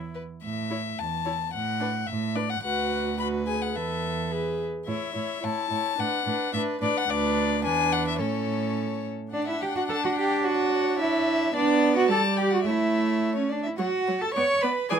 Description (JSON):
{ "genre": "quick classical-period movement for string quartet", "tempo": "108 BPM", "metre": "2/4", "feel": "straight", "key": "A major, D major from 9.3 s", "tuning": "A4 = 440 Hz", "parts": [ { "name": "warm viola", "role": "accompaniment", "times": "0.0-15.0 s", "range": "E3 to A4", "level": "-30 LUFS", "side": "right 3 dB", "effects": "none" }, { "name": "rich cello", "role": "bass", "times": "0.0-15.0 s", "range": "D2 to C#5", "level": "-27 LUFS", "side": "right 4 dB", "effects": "none" }, { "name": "warm violin", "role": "second line", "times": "0.1-15.0 s", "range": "A4 to C#6", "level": "-32 LUFS", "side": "left 3 dB", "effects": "none" }, { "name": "rich violin", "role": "melody", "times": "0.4-15.0 s", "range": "C#5 to B5", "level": "-30 LUFS", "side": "left 9 dB", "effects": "none" } ], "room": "light reverb", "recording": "close, detailed microphones", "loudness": "-24 LUFS", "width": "side -7 dB against mid", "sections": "0.4-9.3 A section; 9.3-15.0 B section", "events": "none", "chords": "0.4 A5; 1.5 Bm7/A (rootless); 2.6 Bm/D; 3.7 Esus4; 4.3 E; 4.9 A; 6.0 Bm7/A; 7.1 Bm/D; 7.6 E7; 8.2 A; 9.3 D; 10.4 Dmaj9; 11.5 Bm; 12.1 G5; 12.7 A; 13.8 F#m; 14.3 Bm" }